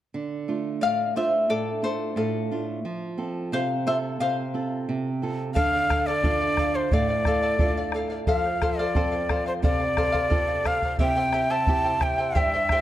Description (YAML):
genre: andean folk, Andean ensemble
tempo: 88 BPM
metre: 2/4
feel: straight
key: unclear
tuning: A4 = 440 Hz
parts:
  - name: flamenco guitar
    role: accompaniment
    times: 0.1-12.8 s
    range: G2 to A4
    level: -29 LUFS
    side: right 4 dB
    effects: none
  - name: charango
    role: accompaniment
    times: 0.8-12.8 s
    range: E4 to G5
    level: -27 LUFS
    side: left 2 dB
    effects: none
  - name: breathy quena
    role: melody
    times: 5.5-12.8 s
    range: C5 to A5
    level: -24 LUFS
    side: equal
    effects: none
  - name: bombo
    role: percussion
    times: 5.6-12.8 s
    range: none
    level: -26 LUFS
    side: equal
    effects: none
room: moderate concert hall reverb, RT60 1.9 s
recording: dark, warm production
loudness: -22 LUFS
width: side -13 dB against mid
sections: 0.1-5.6 A section; 5.6-12.8 B section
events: charango solo 0.1-5.6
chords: 0.1 Dm; 2.9 F; 5.6 Dm; 8.3 F; 11.0 C